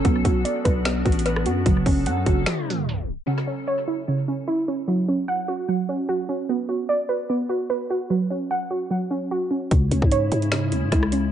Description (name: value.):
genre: hip hop, trap.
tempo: 149 BPM.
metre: 4/4.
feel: half-time.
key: F# minor.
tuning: A4 = 438 Hz.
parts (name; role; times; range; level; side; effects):
glassy FM pad; sustained chords; 0.0-3.3, 9.7-11.3 s; C#3 to A4; -30 LUFS; left 4 dB; ensemble chorus, built-in reverb.
warbly dusty pluck; arpeggios; 0.0-11.3 s; C#3 to F#5; -23 LUFS; right 2 dB; chorus, tape echo.
growling 808-style bass; bass; 0.0-2.5, 9.7-11.3 s; F#1 to G#2; -24 LUFS; left 1 dB; none.
trap drum kit; drums; 0.0-3.2, 9.7-11.2 s; finger snaps, hi-hat, kick drum, rim click, snare drum; -23 LUFS; left 1 dB; tape echo.
room: light reverb.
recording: echo-heavy mix, tape stop, nothing above 10.3 kHz.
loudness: -21 LUFS.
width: side -10 dB against mid.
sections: 0.0-3.3 A section; 3.3-11.3 B section.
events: break 2.5-3.3; tape stop 2.5-3.3.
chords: 0.0 Bm; 1.7 F#m; 3.3 C#m; 4.9 F#5; 6.5 Bm; 8.1 F#5; 9.7 C#m.